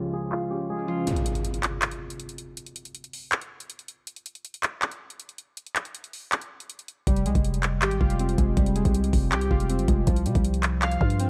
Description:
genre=hip hop, trap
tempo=160 BPM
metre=4/4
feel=half-time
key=F minor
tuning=A4 = 439 Hz
part: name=concert harp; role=melody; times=0.0-3.4 s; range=F4 to Ab4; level=-36 LUFS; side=equal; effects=delay
part: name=warbly lo-fi synth keys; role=accompaniment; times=0.0-1.1, 7.1-11.3 s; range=Db3 to F5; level=-30 LUFS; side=equal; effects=chorus, low-pass filter
part: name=dark chamber string section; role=sustained chords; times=0.0-1.0 s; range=Db2 to F4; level=-48 LUFS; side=equal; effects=none
part: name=trap drum kit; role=drums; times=0.0-11.3 s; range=handclaps, hi-hat, kick drum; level=-28 LUFS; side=equal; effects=none
part: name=impact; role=sound effects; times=1.1-2.6 s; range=none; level=-34 LUFS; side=equal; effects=none
part: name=growling 808-style bass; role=bass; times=7.1-11.3 s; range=F1 to C3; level=-28 LUFS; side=equal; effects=none
room=light reverb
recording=dark, warm production, low-pass filter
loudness=-25 LUFS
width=mono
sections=0.0-1.1 A section; 1.1-11.3 B section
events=filter sweep 0.0-1.1; break 1.1-7.1; impact 1.1-2.6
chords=0.0 Db; 1.1 N.C.; 7.1 Fmadd9; 10.1 Csus4

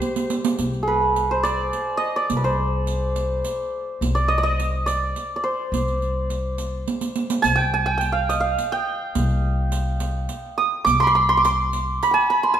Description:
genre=Persian modal ensemble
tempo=105 BPM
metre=3/4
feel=straight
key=C avaz esfahan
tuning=A4 = 437 Hz
part: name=santur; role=melody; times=0.0-12.6 s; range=G4 to Eb6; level=-21 LUFS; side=right 2 dB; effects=none
part: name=riq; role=percussion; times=0.0-12.2 s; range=none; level=-28 LUFS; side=right 5 dB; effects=none
part: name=upright bass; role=bass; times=0.6-12.0 s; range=C2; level=-24 LUFS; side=left 1 dB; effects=none
room=moderate recital hall reverb, RT60 1.5 s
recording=minimal, uncompressed stereo recording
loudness=-19 LUFS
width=side -9 dB against mid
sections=0.6-12.6 A section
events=drum fill 0.0-0.6, 6.9-7.4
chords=none

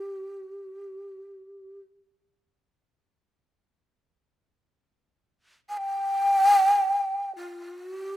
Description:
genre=japanese traditional, Japanese chamber music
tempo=free time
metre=none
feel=none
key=unclear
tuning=A4 = 440 Hz
part: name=breathy mellow long shakuhachi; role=solo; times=0.0-8.2 s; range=G4 to Ab5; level=-24 LUFS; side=equal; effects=none
room=light reverb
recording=close, detailed microphones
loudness=-20 LUFS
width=side -13 dB against mid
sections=0.0-8.2 A section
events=none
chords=none

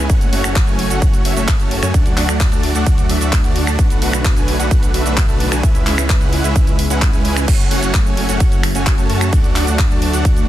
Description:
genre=EDM, festival progressive house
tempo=130 BPM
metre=4/4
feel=straight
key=F# minor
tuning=A4 = 441 Hz
part: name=lush unison pad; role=sustained chords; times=0.0-10.5 s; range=C#3 to F#4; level=-25 LUFS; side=equal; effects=chorus, vintage 12-bit sampler grit, sidechain pumping
part: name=supersaw chords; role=riff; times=0.0-10.5 s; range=G#3 to A5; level=-20 LUFS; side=right 1 dB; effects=sidechain pumping, digital delay
part: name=wide detuned saw bass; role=bass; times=0.0-10.5 s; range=F#1 to F#2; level=-20 LUFS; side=equal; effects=chorus, sidechain pumping
part: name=electronic kick drum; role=drums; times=0.1-10.3 s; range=none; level=-14 LUFS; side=equal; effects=none
part: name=house drum kit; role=drums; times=0.1-10.5 s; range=crash cymbal, finger snaps, handclaps, hi-hat, ride cymbal, shaker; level=-22 LUFS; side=right 1 dB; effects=soft clipping on snare
room=little or no reverb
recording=dense, heavily limited modern master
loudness=-13 LUFS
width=side -13 dB against mid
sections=0.0-7.5 A section; 7.5-10.5 A section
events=drop 0.0-7.5, 7.5-10.5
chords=0.1 F#m; 1.9 D; 3.8 Bm7; 5.6 C#m7; 7.5 F#m; 9.3 D

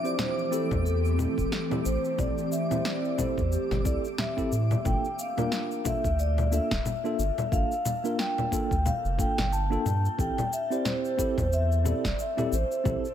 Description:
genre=sunset chillout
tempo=90 BPM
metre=4/4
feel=swing 57% on 16ths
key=G dorian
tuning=A4 = 440 Hz
part: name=vibraphone with soft mallets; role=melody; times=0.0-13.1 s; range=G4 to A5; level=-30 LUFS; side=left 1 dB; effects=ping-pong delay, shimmer reverb
part: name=mellow tine electric piano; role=accompaniment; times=0.0-13.1 s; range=Bb3 to C5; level=-32 LUFS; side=moving between left 3 dB and right 5 dB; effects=auto-pan, ping-pong delay, shimmer reverb
part: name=ethereal airy pad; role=sustained chords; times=0.0-4.8 s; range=E3 to G4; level=-34 LUFS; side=equal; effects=ensemble chorus, built-in reverb, shimmer reverb
part: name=twinkling granular texture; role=texture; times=0.0-4.9 s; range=D6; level=-43 LUFS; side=right 2 dB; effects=built-in reverb, shimmer reverb
part: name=electronic cabasa, snare drum and congas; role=drums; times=0.1-13.1 s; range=none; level=-33 LUFS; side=left 2 dB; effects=none
part: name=warm sub bass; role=bass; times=0.7-13.0 s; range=D1 to A2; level=-27 LUFS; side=right 1 dB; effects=none
part: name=electronic kick drum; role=drums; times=0.7-13.0 s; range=none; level=-31 LUFS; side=right 1 dB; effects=none
room=light reverb, digital ambience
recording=none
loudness=-25 LUFS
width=side -10 dB against mid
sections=0.0-4.9 A section; 4.9-13.1 B section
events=none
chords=0.0 Am7; 4.9 Gm7; 10.2 Am7

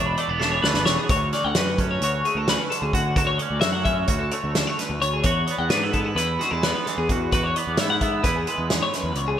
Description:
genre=math rock and midwest emo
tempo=260 BPM (eighths)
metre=9/8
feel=straight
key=D lydian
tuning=A4 = 439 Hz
part: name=twangy electric guitar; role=accompaniment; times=0.0-9.4 s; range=D2 to F#4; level=-28 LUFS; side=right 7 dB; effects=analog chorus
part: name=twelve-string electric guitar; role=arpeggios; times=0.0-9.4 s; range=F#4 to F#5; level=-24 LUFS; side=left 4 dB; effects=lush chorus
part: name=fuzz picked electric bass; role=bass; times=0.0-9.4 s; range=E1 to G#2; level=-27 LUFS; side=equal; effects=overdrive
part: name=loose indie drum kit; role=drums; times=0.2-9.3 s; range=hi-hat, kick drum, snare drum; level=-25 LUFS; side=equal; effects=gated reverb
room=moderate lush hall reverb, RT60 1.8 s, small room ambience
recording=bright 1980s-style digital production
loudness=-20 LUFS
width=side -10 dB against mid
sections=0.0-1.1 A section; 1.1-9.4 B section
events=drum fill 0.4-1.1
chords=0.0 E7sus4; 1.1 Dmaj7; 5.2 Eadd9

